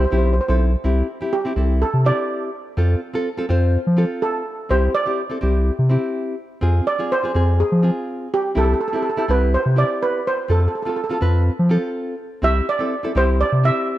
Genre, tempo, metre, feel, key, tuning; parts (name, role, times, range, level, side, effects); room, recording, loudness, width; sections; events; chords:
calypso; 124 BPM; 4/4; straight; C major; A4 = 439 Hz
steel pan; melody; 0.0-14.0 s; G4 to E5; -21 LUFS; right 3 dB; slapback echo
nylon-string guitar; accompaniment; 0.0-14.0 s; C4 to C5; -24 LUFS; left 1 dB
saturated sub bass; bass; 0.0-13.7 s; B1 to F3; -16 LUFS; equal
light reverb, small room ambience; dark, warm production; -17 LUFS; side -14 dB against mid
0.8-14.0 A section
steel pan solo 0.8-14.0
0.0 Cmaj7; 0.8 Cadd9; 2.8 F; 4.7 Cadd9; 6.6 Fm; 8.6 C; 10.5 F; 12.4 Cadd9